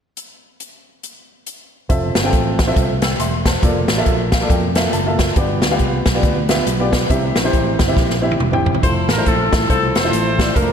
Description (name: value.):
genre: uptempo gospel.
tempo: 139 BPM.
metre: 4/4.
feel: swing 60% on 8ths.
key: F major.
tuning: A4 = 443 Hz.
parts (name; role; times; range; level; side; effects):
swinging big-band drum kit; drums; 0.2-10.7 s; hi-hat, kick drum, snare drum, toms; -17 LUFS; equal; none.
warm upright piano; accompaniment; 1.9-10.7 s; G2 to E6; -20 LUFS; equal; slapback echo.
fingered electric bass; bass; 1.9-10.7 s; E1 to F2; -22 LUFS; equal; none.
clear horn section; melody; 8.8-10.7 s; C4 to C5; -19 LUFS; left 1 dB; slapback echo, tape echo.
room: moderate lush hall reverb, RT60 1.9 s.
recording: big arena sound.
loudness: -14 LUFS.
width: side -7 dB against mid.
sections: 0.2-1.9 A section; 1.9-8.8 B section; 8.8-10.7 C section.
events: upright piano fill 4.1-5.4; drum fill 8.0-8.8.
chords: 0.2 N.C.; 1.9 Fmaj7; 3.6 Bbmaj7/F; 5.4 G7; 7.1 C; 8.8 Fmaj7.